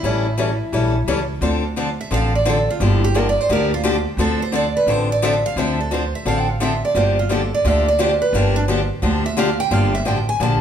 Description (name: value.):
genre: acoustic string swing (jazz manouche).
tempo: 174 BPM.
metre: 4/4.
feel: swing 62% on 8ths.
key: D minor.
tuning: A4 = 440 Hz.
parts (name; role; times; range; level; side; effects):
picked steel-string acoustic guitar; melody; 0.0-10.6 s; D4 to A5; -21 LUFS; right 2 dB; none.
picked steel-string acoustic guitar; accompaniment; 0.0-10.6 s; D3 to A4; -21 LUFS; left 3 dB; none.
upright bass; bass; 0.0-10.6 s; G1 to D2; -21 LUFS; right 1 dB; none.
room: moderate large studio reverb, RT60 1.1 s.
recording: band playing live in one room.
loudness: -16 LUFS.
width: side -8 dB against mid.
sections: 0.0-1.4 A section; 1.4-10.6 B section.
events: steel-string acoustic guitar solo 1.4-10.6.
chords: 0.0 A7b9; 1.4 Dm7; 2.8 Gm7; 4.2 Dm7; 7.0 Gm7.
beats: | 0.04 0.39 0.73 1.08 | 1.42 1.77 2.11 2.46 | 2.81 3.15 3.50 3.84 | 4.19 4.53 4.88 5.22 | 5.57 5.92 6.26 6.61 | 6.95 7.30 7.65 7.99 | 8.34 8.68 9.03 9.38 | 9.72 10.07 10.41.